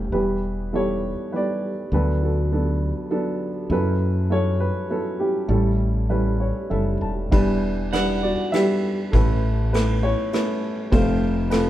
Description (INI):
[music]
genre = acoustic folk-pop ballad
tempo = 100 BPM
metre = 3/4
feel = straight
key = E dorian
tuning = A4 = 440 Hz
[part]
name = dark upright piano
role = melody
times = 0.0-11.7 s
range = F1 to A5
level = -22 LUFS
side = equal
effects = none
[part]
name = mellow fretless electric bass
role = bass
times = 0.0-11.7 s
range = E1 to F#2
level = -23 LUFS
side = equal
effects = none
[part]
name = vintage brush drum kit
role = drums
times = 7.3-11.7 s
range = kick drum, ride cymbal, rim click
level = -25 LUFS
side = equal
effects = none
[part]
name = electric guitar at the edge of break-up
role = arpeggios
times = 7.9-8.8 s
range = F#5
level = -29 LUFS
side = right 1 dB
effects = tremolo
[sound]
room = moderate small room reverb, RT60 0.6 s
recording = band playing live in one room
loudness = -20 LUFS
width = side -13 dB against mid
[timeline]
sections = 0.0-7.3 A section; 7.3-11.7 B section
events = upright piano fill 6.1-7.3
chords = 0.1 Em; 1.9 Bm7/D; 3.7 F#m7; 5.5 A7; 7.3 Em7; 9.1 Aadd9; 10.9 F